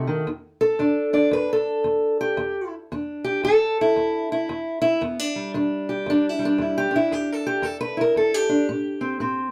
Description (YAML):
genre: acoustic country blues, solo or duo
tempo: 114 BPM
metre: 4/4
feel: swing 62% on 8ths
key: E minor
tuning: A4 = 440 Hz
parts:
  - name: fingerpicked steel-string acoustic guitar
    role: solo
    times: 0.0-9.5 s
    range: E2 to D5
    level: -23 LUFS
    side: equal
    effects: none
room: moderate studio reverb, RT60 0.5 s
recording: none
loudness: -23 LUFS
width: mono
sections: 0.3-9.5 A section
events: steel-string acoustic guitar solo 0.3-9.5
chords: 0.3 Em7; 8.7 Am7